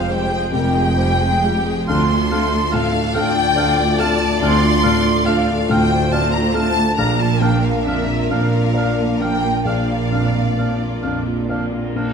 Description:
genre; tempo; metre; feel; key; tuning
cinematic; 43-48 BPM (dotted quarters); 6/8; rubato; unclear; A4 = 440 Hz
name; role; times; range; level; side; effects
warm studio violin section; melody; 0.0-11.7 s; G4 to D5; -28 LUFS; left 2 dB; none
clear oboe; second line; 0.0-12.1 s; F5 to G5; -29 LUFS; right 2 dB; none
dark clarinet; second line; 0.0-12.1 s; C4 to D4; -31 LUFS; left 4 dB; none
dark studio violin section; second line; 0.0-11.0 s; E5 to C6; -23 LUFS; left 2 dB; none
mellow flute section; second line; 0.0-11.0 s; E5 to C6; -24 LUFS; right 1 dB; none
dark baby grand piano; accompaniment; 0.0-12.1 s; Bb1 to D5; -24 LUFS; left 4 dB; none
rich studio viola section; accompaniment; 0.0-12.1 s; F3 to Ab4; -28 LUFS; equal; none
mellow French horn section; sustained chords; 0.0-12.1 s; Ab3 to F4; -25 LUFS; left 4 dB; none
warm studio cello section; bass; 0.0-12.1 s; D2 to Bb2; -23 LUFS; right 3 dB; none
warm studio double bass section; bass; 0.0-12.1 s; F1 to D2; -22 LUFS; right 3 dB; none
room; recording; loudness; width
moderate scoring stage reverb, RT60 1.9 s; none; -15 LUFS; side -6 dB against mid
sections
0.0-12.1 A section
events
none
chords
0.0 Fmadd9; 1.9 Dm7; 7.0 Bb

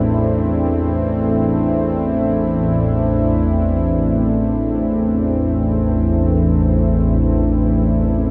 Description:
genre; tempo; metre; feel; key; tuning
dark ambient drone; free time; none; none; A minor; A4 = 442 Hz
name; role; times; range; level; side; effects
sweeping resonant pad; sustained chords; 0.0-8.3 s; A3 to E4; -20 LUFS; equal; chorus
organ-like drone; drone; 0.0-8.3 s; A1 to E2; -20 LUFS; equal; ensemble chorus, built-in reverb
bronze singing bowl; texture; 0.0-8.3 s; none; barely audible; none; none
room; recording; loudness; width
moderate huge ambient reverb, RT60 8.7 s; dark, warm production; -17 LUFS; mono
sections
0.0-3.9 A section; 3.9-8.3 B section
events
none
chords
0.0 A5

